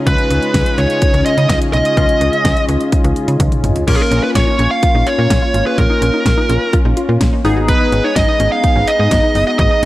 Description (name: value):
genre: synth-pop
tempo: 126 BPM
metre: 4/4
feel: straight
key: unclear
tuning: A4 = 440 Hz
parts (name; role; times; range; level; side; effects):
- funky polysynth comp; accompaniment; 0.0-9.9 s; Ab3 to Ab4; -21 LUFS; left 2 dB; chorus
- brassy analog pad; sustained chords; 0.0-9.9 s; Db3 to Ab4; -22 LUFS; equal; chorus
- dark smooth lead guitar; melody; 0.1-9.9 s; Ab4 to F5; -16 LUFS; right 1 dB; overdrive
- slap-like FM bass; bass; 0.1-9.9 s; Gb1 to Db3; -16 LUFS; equal; none
- pop drum kit; drums; 0.1-9.9 s; crash cymbal, hi-hat, kick drum, snare drum, toms; -16 LUFS; equal; none
- wide unison pluck; arpeggios; 4.0-9.9 s; Cb4 to Ab4; -24 LUFS; left 1 dB; tape echo
room: light reverb, digital ambience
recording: none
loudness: -11 LUFS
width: side -16 dB against mid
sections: 0.0-3.9 A section; 3.9-9.9 B section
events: drum fill 3.4-3.9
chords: 0.0 Dbadd9; 3.9 Bbm; 7.4 Abm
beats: | 0.07 0.54 1.02 1.49 | 1.97 2.45 2.92 3.40 | 3.88 4.35 4.83 5.30 | 5.78 6.26 6.73 7.21 | 7.68 8.16 8.64 9.11 | 9.59